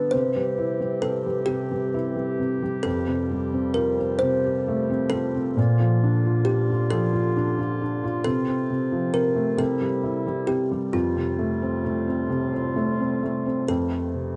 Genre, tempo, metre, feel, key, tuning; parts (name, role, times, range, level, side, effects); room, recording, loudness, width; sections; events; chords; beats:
children's music, lullaby; 44 BPM (dotted quarters); 6/8; straight; F major; A4 = 439 Hz
kalimba; melody; 0.0-14.4 s; F4 to C5; -30 LUFS; equal
felt-muted upright piano; accompaniment; 0.0-14.4 s; F2 to G4; -26 LUFS; equal
clear woodwind section; sustained chords; 0.0-14.4 s; A2 to G4; -35 LUFS; equal
moderate small room reverb, RT60 0.5 s; dark, warm production, nothing above 10.4 kHz; -24 LUFS; mono
0.0-13.7 A section
0.1 C; 2.9 Fadd9; 5.6 Bb; 8.3 F/C; 9.6 C; 10.9 Fadd9; 13.7 F
| 0.12 1.48 | 2.85 4.22 | 5.57 6.91 | 8.25 9.59 | 10.94 12.30 | 13.68